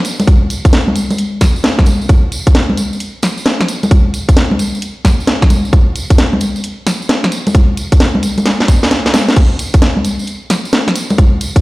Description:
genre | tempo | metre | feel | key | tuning
UK garage | 132 BPM | 4/4 | swing 65% on 16ths | none | none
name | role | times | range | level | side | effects
garage drum kit | drums | 0.0-11.6 s | congas, crash cymbal, hi-hat, snare drum | -14 LUFS | equal | none
tambourine | percussion | 0.1-11.6 s | none | -26 LUFS | right 2 dB | none
electronic kick drum | drums | 0.3-11.6 s | none | -9 LUFS | equal | none
room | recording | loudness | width
light reverb | played on a big sound system in a bare room, stone room reverb | -10 LUFS | side -20 dB against mid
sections
0.0-11.6 A section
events
drum fill 8.5-9.4; kick drops out 8.9-9.4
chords
none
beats
| 0.27 0.73 1.18 1.64 | 2.09 2.55 3.00 3.46 | 3.91 4.37 4.82 5.27 | 5.73 6.18 6.64 7.09 | 7.55 8.00 8.46 8.91 | 9.37 9.82 10.27 10.73 | 11.18

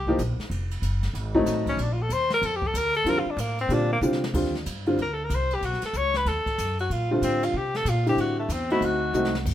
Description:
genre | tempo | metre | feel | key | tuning
jazz, small-group swing and bop | 188 BPM | 4/4 | swing 63% on 8ths | Bb major | A4 = 440 Hz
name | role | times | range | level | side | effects
warm tenor saxophone | melody | 0.0-9.5 s | A3 to Db5 | -26 LUFS | left 2 dB | plate reverb
upright bass | bass | 0.0-9.5 s | F1 to C3 | -29 LUFS | equal | none
clear upright piano | accompaniment | 0.1-5.0, 7.1-9.3 s | D3 to G4 | -24 LUFS | equal | plate reverb
jazz brush drum kit | drums | 0.1-9.5 s | crash cymbal, hi-hat, kick drum, ride cymbal, snare drum | -35 LUFS | equal | none
room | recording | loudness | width
light reverb | rough home demo mix | -23 LUFS | side -12 dB against mid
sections
0.0-4.3 A section; 4.3-9.5 A section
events
tenor saxophone solo 0.0-9.5; drum fill 4.0-4.3, 9.1-9.5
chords
0.0 Cm7; 0.5 F7b9; 1.8 Bbmaj7; 3.7 Bbadd9; 4.3 Ebmaj9; 5.6 B7; 6.9 Bbmaj9; 8.2 Am7; 8.8 D7b9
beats
0.19 | 0.51 0.83 1.15 1.47 | 1.79 2.11 2.43 2.75 | 3.07 3.38 3.71 4.03 | 4.34 4.66 4.98 5.30 | 5.62 5.94 6.26 6.58 | 6.90 7.22 7.54 7.86 | 8.18 8.50 8.82 9.14 | 9.46

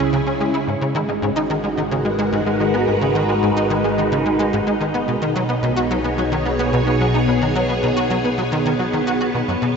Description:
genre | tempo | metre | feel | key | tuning
ambient, sequencer-driven space music | 109 BPM | 4/4 | straight | G# minor | A4 = 439 Hz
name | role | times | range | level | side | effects
phased string machine | sustained chords | 0.0-9.8 s | B2 to C#5 | -19 LUFS | equal | ensemble chorus, phaser
tight sequencer bass | riff | 0.0-9.7 s | F#2 to F#4 | -21 LUFS | equal | ensemble chorus, ping-pong delay
analog drone | bass | 0.0-9.8 s | G#1 to C#2 | -30 LUFS | equal | chorus
wind-like tuned noise texture | texture | 0.0-0.7 s | C#5 | -40 LUFS | right 7 dB | none
room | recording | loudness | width
wet cathedral reverb, RT60 6.5 s | in a vast, echoing space, nothing above 7.8 kHz | -17 LUFS | side -6 dB against mid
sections
0.7-9.8 A section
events
none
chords
0.0 C#m; 0.7 G#m7; 5.1 B6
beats
0.13 | 0.68 1.23 1.78 2.33 | 2.88 3.43 3.98 4.53 | 5.08 5.63 6.18 6.73 | 7.28 7.83 8.38 8.93 | 9.48

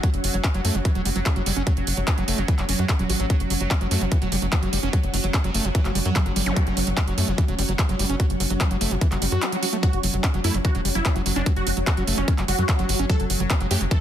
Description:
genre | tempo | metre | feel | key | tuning
psychedelic trance | 147 BPM | 4/4 | straight | unclear | A4 = 440 Hz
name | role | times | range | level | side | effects
pulsing gated texture | sustained chords | 0.0-14.0 s | F#3 | -32 LUFS | right 3 dB | chorus, built-in reverb, sidechain pumping
screaming distorted acid line | riff | 0.0-14.0 s | E3 to F#4 | -29 LUFS | right 1 dB | distortion, chorus, auto-pan, sidechain pumping, tape echo
drum and bass drum kit | drums | 0.0-14.0 s | handclaps, hi-hat | -28 LUFS | right 2 dB | overdrive
electronic kick drum | drums | 0.0-14.0 s | none | -21 LUFS | equal | overdrive
ethereal airy pad | texture | 0.0-14.0 s | C#4 to F#5 | -32 LUFS | equal | ensemble chorus, built-in reverb, sidechain pumping
tight sequencer bass | bass | 0.1-13.9 s | E1 to F#2 | -25 LUFS | equal | none
zap and swell | sound effects | 6.5-6.6, 9.2-9.8 s | none | -34 LUFS | equal | none
supersaw stab | melody | 9.8-14.0 s | C#4 to A4 | -29 LUFS | equal | phaser, vintage 12-bit sampler grit, sidechain pumping, tape echo
room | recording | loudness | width
light reverb | dense, heavily limited modern master | -20 LUFS | side -10 dB against mid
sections
0.0-14.0 A section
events
swell 9.2-9.8; kick drops out 9.4-9.8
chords
0.0 F#5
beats
| 0.03 0.44 0.85 1.26 | 1.67 2.08 2.48 2.89 | 3.30 3.71 4.12 4.52 | 4.93 5.34 5.75 6.16 | 6.57 6.97 7.38 7.79 | 8.20 8.61 9.01 9.42 | 9.83 10.24 10.65 11.05 | 11.46 11.87 12.28 12.69 | 13.10 13.50 13.91

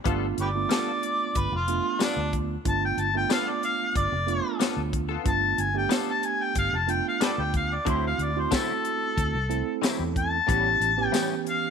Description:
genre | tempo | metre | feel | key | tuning
straight-eighth soul blues | 92 BPM | 4/4 | straight | unclear | A4 = 440 Hz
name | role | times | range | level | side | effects
direct-recorded clean electric guitar | stabs | 0.0-11.3 s | A2 to A4 | -34 LUFS | left 13 dB | analog chorus
tine electric piano | accompaniment | 0.1-11.7 s | E3 to A4 | -30 LUFS | right 16 dB | medium stereo tremolo
vintage muted fingered electric bass | bass | 0.1-11.1 s | F1 to E2 | -30 LUFS | left 1 dB | none
tight funk drum kit | drums | 0.1-11.6 s | hi-hat, kick drum, snare drum, tambourine | -28 LUFS | left 1 dB | none
warm harmonica | melody | 0.4-11.7 s | D4 to A5 | -27 LUFS | left 2 dB | overdrive
room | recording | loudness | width
light reverb, studio ambience | 1960s-style stereo with parts hard left and right | -23 LUFS | side -6 dB against mid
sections
0.0-11.7 A section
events
harmonica solo 0.0-11.7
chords
0.1 G9; 7.9 D9; 10.5 A9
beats
| 0.05 0.70 1.35 2.00 | 2.65 3.30 3.95 4.60 | 5.25 5.91 6.56 7.21 | 7.87 8.52 9.17 9.83 | 10.48 11.13

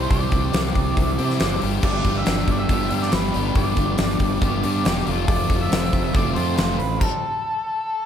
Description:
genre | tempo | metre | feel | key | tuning
classic rock | 139 BPM | 4/4 | straight | unclear | A4 = 440 Hz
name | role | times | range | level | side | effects
octave-fuzz lead guitar | melody | 0.0-8.1 s | A4 to E5 | -27 LUFS | equal | distortion, slapback echo
biting overdriven guitar | riff | 0.0-6.8 s | F2 to C5 | -27 LUFS | left 11 dB | slapback echo
crunchy overdriven guitar | riff | 0.0-7.0 s | F2 to C5 | -28 LUFS | right 11 dB | slapback echo
fuzz fingered electric bass | bass | 0.0-7.0 s | E1 to C3 | -25 LUFS | equal | overdrive
huge arena drum kit | drums | 0.1-7.1 s | crash cymbal, hi-hat, kick drum, snare drum | -22 LUFS | equal | none
room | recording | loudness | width
light reverb, small room ambience | none | -18 LUFS | side -9 dB against mid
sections
0.0-8.1 A section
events
stop 7.0-8.1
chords
0.0 C; 1.6 G; 5.1 F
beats
| 0.11 0.54 0.97 1.40 | 1.83 2.26 2.69 3.13 | 3.56 3.99 4.42 4.86 | 5.29 5.72 6.15 6.58 | 7.02 7.45 7.88

